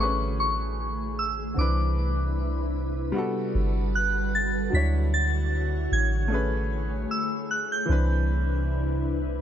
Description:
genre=R&B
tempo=76 BPM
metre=4/4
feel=swing 54% on 16ths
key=unclear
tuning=A4 = 441 Hz
part: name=soft synth bell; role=melody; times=0.0-8.9 s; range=C#6 to B6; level=-29 LUFS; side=equal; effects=chorus, phaser, ping-pong delay
part: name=clear grand piano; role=accompaniment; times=0.0-9.4 s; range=D3 to C#5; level=-32 LUFS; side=left 2 dB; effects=none
part: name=glassy FM pad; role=sustained chords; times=0.0-9.4 s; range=C3 to C#5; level=-32 LUFS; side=equal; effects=ensemble chorus, built-in reverb
part: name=soft 808-style bass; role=bass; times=0.0-9.4 s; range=G1 to D2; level=-26 LUFS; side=equal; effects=none
room=little or no reverb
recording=none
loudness=-24 LUFS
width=side -10 dB against mid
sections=0.0-9.4 A section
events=none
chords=0.0 Amaj9; 1.6 Cmaj9; 3.2 Gmaj9; 4.7 Dmaj9; 6.3 Amaj9; 7.9 Cmaj9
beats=0.78 | 1.57 2.36 3.15 3.94 | 4.73 5.52 6.31 7.10 | 7.89 8.68

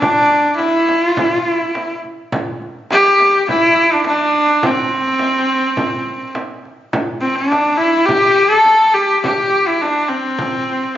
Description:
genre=mongolian traditional, Mongolian folk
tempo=104 BPM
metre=4/4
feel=straight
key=C gong mode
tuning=A4 = 441 Hz
part: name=bright horsehead fiddle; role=melody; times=0.0-11.0 s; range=C4 to A4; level=-12 LUFS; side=equal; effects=none
part: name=frame drum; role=percussion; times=0.0-10.5 s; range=none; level=-24 LUFS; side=right 1 dB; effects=none
room=moderate recital hall reverb, RT60 1.4 s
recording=recorded on a phone in the room, club reverb, compression, nothing above 7.5 kHz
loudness=-12 LUFS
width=side -12 dB against mid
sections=0.0-6.9 A section; 6.9-11.0 B section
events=none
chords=none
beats=| 0.02 0.59 1.17 1.74 | 2.32 2.89 3.47 4.04 | 4.62 5.19 5.77 6.34 | 6.92 7.49 8.07 8.64 | 9.22 9.79 10.37 10.94

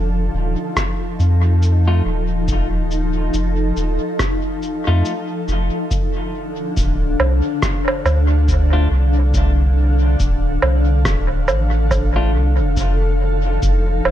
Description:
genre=ambient dub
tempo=70 BPM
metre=4/4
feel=swing 59% on 16ths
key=unclear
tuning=A4 = 440 Hz
part: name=granular cloud pad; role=sustained chords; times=0.0-14.1 s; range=D3 to F5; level=-23 LUFS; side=left 1 dB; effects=built-in reverb
part: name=soft dub sub bass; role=bass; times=0.0-14.1 s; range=D1 to F2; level=-16 LUFS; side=equal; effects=none
part: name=electronic kick drum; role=drums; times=0.8-13.8 s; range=none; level=-22 LUFS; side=equal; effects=none
part: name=electronic rim click, shaker and woodblock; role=drums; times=0.8-14.1 s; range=none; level=-23 LUFS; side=right 2 dB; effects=dub echo
part: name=clean electric guitar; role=stabs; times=1.9-12.3 s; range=A3 to F4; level=-28 LUFS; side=left 2 dB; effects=dub echo
room=digital ambience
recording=none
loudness=-15 LUFS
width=side -12 dB against mid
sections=0.0-5.9 A section; 5.9-14.1 B section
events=none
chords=0.0 F7; 5.9 Dm; 12.8 F7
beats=0.77 1.62 | 2.48 3.34 4.20 5.05 | 5.91 6.77 7.62 8.48 | 9.34 10.20 11.05 11.91 | 12.77 13.62

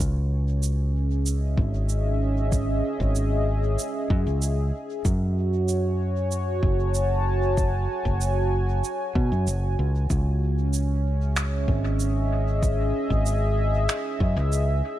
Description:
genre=ambient dub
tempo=95 BPM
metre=4/4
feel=straight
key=C# minor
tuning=A4 = 440 Hz
part: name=warm analog pad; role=sustained chords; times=0.0-15.0 s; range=C#4 to A5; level=-28 LUFS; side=right 1 dB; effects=chorus
part: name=fingered electric bass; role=bass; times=0.0-14.8 s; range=F#1 to B2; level=-23 LUFS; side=equal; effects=none
part: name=electronic kick drum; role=drums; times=0.0-14.3 s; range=none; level=-26 LUFS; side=equal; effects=none
part: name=electronic shaker and finger snaps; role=drums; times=0.0-14.7 s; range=none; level=-32 LUFS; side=right 3 dB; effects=dub echo
room=light reverb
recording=none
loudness=-22 LUFS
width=side -13 dB against mid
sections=0.0-15.0 A section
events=none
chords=0.0 C#m; 5.1 F#m7; 10.1 C#m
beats=| 0.00 0.63 1.26 1.89 | 2.52 3.16 3.79 4.42 | 5.05 5.68 6.32 6.95 | 7.58 8.21 8.84 9.47 | 10.10 10.74 11.37 12.00 | 12.63 13.26 13.89 14.53

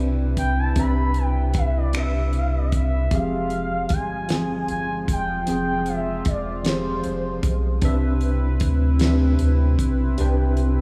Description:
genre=slow six-eight R&B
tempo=51 BPM (dotted quarters)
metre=6/8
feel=straight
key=unclear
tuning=A4 = 440 Hz
part: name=tine electric piano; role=accompaniment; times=0.0-10.8 s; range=C3 to Ab5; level=-28 LUFS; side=equal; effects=overdrive
part: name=chorused pulse-width pad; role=sustained chords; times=0.0-10.8 s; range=C3 to B4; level=-34 LUFS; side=equal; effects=none
part: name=round analog bass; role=bass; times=0.0-10.8 s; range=E1 to D2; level=-25 LUFS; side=equal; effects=none
part: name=gliding portamento lead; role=melody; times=0.4-7.5 s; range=C5 to B5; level=-30 LUFS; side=equal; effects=chorus, diffuse ambient delay
part: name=damped 70s drum kit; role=drums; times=0.4-10.8 s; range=finger snaps, hi-hat, kick drum, snare drum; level=-27 LUFS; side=equal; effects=none
room=light reverb, small room ambience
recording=none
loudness=-22 LUFS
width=mono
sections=0.0-3.1 A section; 3.1-10.8 B section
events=soft synth lead solo 0.0-3.1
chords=0.0 Cmaj7; 3.1 Fmadd9; 7.8 Cmaj7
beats=| 0.77 1.94 | 3.12 4.29 | 5.47 6.65 | 7.82 9.00 | 10.18

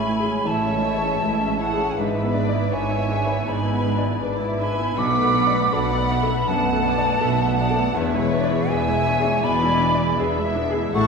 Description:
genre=cinematic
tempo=80 BPM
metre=4/4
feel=rubato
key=unclear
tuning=A4 = 440 Hz
part: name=hollow concert flute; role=second line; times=0.0-11.1 s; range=E5 to D6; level=-24 LUFS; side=right 1 dB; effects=none
part: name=muted symphonic violin section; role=second line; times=0.0-11.1 s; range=B4 to B5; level=-30 LUFS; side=left 1 dB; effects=none
part: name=bright grand piano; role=accompaniment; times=0.0-11.1 s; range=B1 to F#5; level=-26 LUFS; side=left 2 dB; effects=none
part: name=muted symphonic viola section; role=accompaniment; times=0.0-11.1 s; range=G#3 to E4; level=-28 LUFS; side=right 2 dB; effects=none
part: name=concert harp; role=arpeggios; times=0.0-11.1 s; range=G#2 to F#5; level=-29 LUFS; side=left 4 dB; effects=none
part: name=muted symphonic cello section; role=bass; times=0.0-11.1 s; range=E2 to B2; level=-28 LUFS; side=right 4 dB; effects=none
part: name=muted symphonic double bass section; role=bass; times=0.0-11.1 s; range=E1 to B1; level=-29 LUFS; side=right 2 dB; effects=none
part: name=muted symphonic violin section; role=melody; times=0.5-11.1 s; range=B4 to F#5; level=-31 LUFS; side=left 3 dB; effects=none
room=wet scoring stage reverb, RT60 1.8 s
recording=heard from further back in the room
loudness=-19 LUFS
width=side -5 dB against mid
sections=0.0-11.1 A section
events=none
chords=0.0 Amaj7; 2.0 E7/G#; 5.0 Bm7; 8.0 E7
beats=0.46 1.22 | 1.98 2.73 3.48 4.23 | 4.98 5.73 6.49 7.22 | 7.96 8.70 9.45 10.19 | 10.95

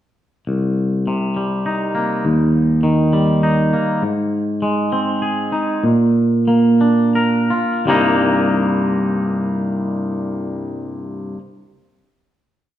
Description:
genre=post-rock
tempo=81-102 BPM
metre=3/4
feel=straight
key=C minor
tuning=A4 = 440 Hz
part: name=twangy electric guitar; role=solo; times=0.5-11.4 s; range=C2 to Bb4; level=-15 LUFS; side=equal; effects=none
room=wet stone room reverb, RT60 1.3 s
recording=band playing live in one room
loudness=-15 LUFS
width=side -12 dB against mid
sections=0.5-7.9 A section; 7.9-12.3 final chord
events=slowing down 4.0-7.9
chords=0.5 Cm7; 2.3 Eb; 4.0 Ab; 5.8 Bb; 7.9 Cm7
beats=| 0.48 1.07 1.67 | 2.25 2.84 3.43 | 4.02 4.62 5.22 | 5.84 6.48 7.16 | 7.87 8.61 9.35 | 10.09 10.83

